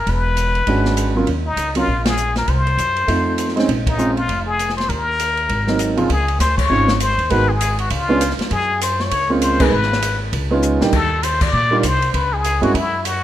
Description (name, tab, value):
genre	jazz, small-group swing and bop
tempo	199 BPM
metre	4/4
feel	swing 60% on 8ths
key	unclear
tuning	A4 = 440 Hz
part	trumpet with plunger mute	melody	0.0-13.2 s	Eb4 to D5	-20 LUFS	left 3 dB	none
part	upright bass	bass	0.0-13.2 s	E1 to Bb2	-21 LUFS	equal	none
part	open jazz drum kit	drums	0.1-13.1 s	crash cymbal, hi-hat, kick drum, ride cymbal, snare drum	-24 LUFS	equal	none
part	warm upright piano	accompaniment	0.7-12.7 s	Db2 to Ab4	-19 LUFS	right 2 dB	none
room	light reverb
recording	rough home demo mix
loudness	-15 LUFS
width	side -12 dB against mid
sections	0.0-6.1 A section; 6.1-13.2 B section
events	band accent 2.0, 3.8, 6.5, 9.6, 11.4; drum fill 10.6-10.9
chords	0.1 E13; 1.3 Eb7(no3); 2.5 N.C.; 3.1 F7; 3.7 Bbm7; 4.9 Eb5; 5.5 Ab9; 6.1 Dbmaj7; 7.3 Abm7; 7.9 Db7b9; 8.5 Gbmaj9#11; 9.7 Abm; 10.3 Db9; 10.9 Ebmaj7(no3); 12.1 Dbm